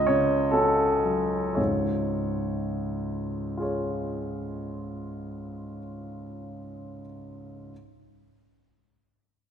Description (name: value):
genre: classical, romantic character piece for solo piano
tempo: 60 BPM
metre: 2/4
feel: rubato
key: Db major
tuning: A4 = 440 Hz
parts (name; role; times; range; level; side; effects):
- warm grand piano; solo; 0.0-7.7 s; Db2 to Eb5; -26 LUFS; equal; none
room: moderate concert hall reverb, RT60 1.8 s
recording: recorded in a church or concert hall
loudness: -25 LUFS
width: side -8 dB against mid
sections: 0.0-1.6 A section; 1.6-5.5 B section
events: slowing down 0.0-1.6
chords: 0.0 Gbm/Db; 1.6 Db